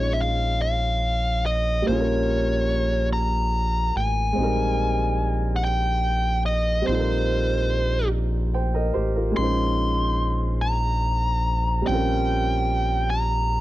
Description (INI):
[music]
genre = slow six-eight R&B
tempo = 48 BPM (dotted quarters)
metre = 6/8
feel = straight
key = Bb dorian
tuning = A4 = 436 Hz
[part]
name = fuzz lead guitar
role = melody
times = 0.0-13.6 s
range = C5 to C6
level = -25 LUFS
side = equal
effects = distortion, slapback echo
[part]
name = warm concert grand piano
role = accompaniment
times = 0.0-13.6 s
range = G3 to G5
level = -27 LUFS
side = right 1 dB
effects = none
[part]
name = round analog bass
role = bass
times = 0.0-13.6 s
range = A1 to Bb1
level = -24 LUFS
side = equal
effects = none
[sound]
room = small room ambience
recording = dry, close 1970s-style studio recording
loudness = -21 LUFS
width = side -15 dB against mid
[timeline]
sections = 0.0-13.6 A section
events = none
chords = 0.0 Bbm7; 1.9 A7b9b13; 4.4 Abmaj9/Bb; 6.9 F9sus4/Bb; 9.4 Bbm11; 11.9 Bbm69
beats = 0.61 | 1.86 3.11 | 4.36 5.61 | 6.86 8.11 | 9.36 10.61 | 11.86 13.11